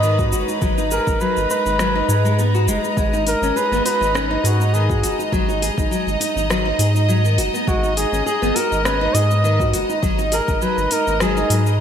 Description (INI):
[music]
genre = organic downtempo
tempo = 102 BPM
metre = 4/4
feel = swing 54% on 16ths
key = G# minor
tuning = A4 = 441 Hz
[part]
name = trumpet with bucket mute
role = melody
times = 0.0-11.8 s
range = F#4 to D#5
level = -22 LUFS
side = equal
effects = ping-pong delay
[part]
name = warm studio string section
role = sustained chords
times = 0.0-11.8 s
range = G#3 to A#5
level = -26 LUFS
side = equal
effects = sidechain pumping
[part]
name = nylon-string guitar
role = arpeggios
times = 0.0-11.7 s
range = D#3 to G#4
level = -22 LUFS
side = equal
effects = ping-pong delay
[part]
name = round analog bass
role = bass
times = 0.0-11.8 s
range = F#1 to G#2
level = -20 LUFS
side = equal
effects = sidechain pumping
[part]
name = afro-pop drum kit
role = drums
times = 0.0-11.8 s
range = cabasa, hi-hat, rim click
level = -27 LUFS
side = left 1 dB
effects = studio reverb, gated reverb
[part]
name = electronic kick drum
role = drums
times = 0.2-10.6 s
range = none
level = -22 LUFS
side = equal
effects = studio reverb
[sound]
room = moderate lush hall reverb, RT60 3.1 s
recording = bright 1980s-style digital production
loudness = -16 LUFS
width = side -8 dB against mid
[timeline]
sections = 0.0-11.8 A section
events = none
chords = 0.0 G#m7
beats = 0.03 | 0.62 1.21 1.80 2.38 | 2.97 3.56 4.15 4.74 | 5.33 5.92 6.50 7.09 | 7.68 8.27 8.86 9.44 | 10.03 10.62 11.21 11.80